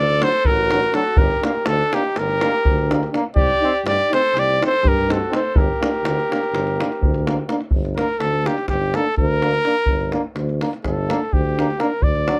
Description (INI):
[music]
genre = balkan folk, Balkan brass band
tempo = 249 BPM (eighths)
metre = 9/8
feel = straight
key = G harmonic minor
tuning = A4 = 440 Hz
[part]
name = mellow trumpet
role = melody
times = 0.0-12.4 s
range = G4 to D5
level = -22 LUFS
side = equal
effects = none
[part]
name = clear flugelhorn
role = second line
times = 0.0-7.5 s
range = D4 to A4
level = -31 LUFS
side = equal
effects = none
[part]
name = warm tuba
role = bass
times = 0.0-12.3 s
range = G1 to G2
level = -26 LUFS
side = equal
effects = none
[part]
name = davul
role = percussion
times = 0.1-12.4 s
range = none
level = -25 LUFS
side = equal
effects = none
[part]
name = brilliant trombone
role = accompaniment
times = 0.2-12.4 s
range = F#3 to C4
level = -29 LUFS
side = equal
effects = none
[part]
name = warm euphonium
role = accompaniment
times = 0.2-12.4 s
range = D4 to Eb4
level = -27 LUFS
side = equal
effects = none
[sound]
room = little or no reverb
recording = close, detailed microphones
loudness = -19 LUFS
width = mono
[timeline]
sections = 0.0-7.7 A section; 7.7-12.4 B section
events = speeding up 0.0-12.4; trumpet solo 7.7-12.4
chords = 0.0 D; 1.2 Gm; 3.4 Cm; 5.5 Gm